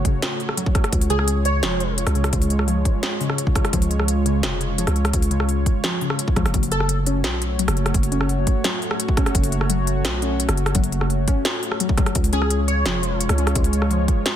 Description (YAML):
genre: half-time drum and bass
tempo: 171 BPM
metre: 4/4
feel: half-time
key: F# harmonic minor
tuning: A4 = 441 Hz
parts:
  - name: dark analog pad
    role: sustained chords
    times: 0.0-14.4 s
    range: G#3 to C#5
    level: -28 LUFS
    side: right 1 dB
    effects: chorus, sidechain pumping
  - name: growling 808-style bass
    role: bass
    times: 0.0-14.1 s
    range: E#1 to C#2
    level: -21 LUFS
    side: equal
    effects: none
  - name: electronic kick drum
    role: drums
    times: 0.0-14.2 s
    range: none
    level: -20 LUFS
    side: equal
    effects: none
  - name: warbly dusty pluck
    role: arpeggios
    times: 0.1-14.1 s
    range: C#3 to C#4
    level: -28 LUFS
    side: left 3 dB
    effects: chorus, dub echo
  - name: industrial drum kit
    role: drums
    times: 0.1-14.3 s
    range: hi-hat, rim click, snare drum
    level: -25 LUFS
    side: left 1 dB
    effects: none
  - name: plucky unison lead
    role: melody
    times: 1.1-1.9, 6.7-7.0, 12.3-13.2 s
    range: G#4 to C#5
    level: -27 LUFS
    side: right 1 dB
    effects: wide subtle chorus, tape echo
room: light reverb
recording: dense, heavily limited modern master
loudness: -18 LUFS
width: side -10 dB against mid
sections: 0.0-14.4 A section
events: none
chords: 0.0 F#m; 0.9 C#; 6.5 F#m; 12.2 C#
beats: 0.23 0.58 | 0.93 1.28 1.63 1.98 | 2.33 2.68 3.03 3.38 | 3.73 4.08 4.43 4.79 | 5.14 5.49 5.84 6.19 | 6.54 6.89 7.24 7.59 | 7.94 8.29 8.65 9.00 | 9.35 9.70 10.05 10.40 | 10.75 11.10 11.45 11.80 | 12.15 12.51 12.86 13.21 | 13.56 13.91 14.26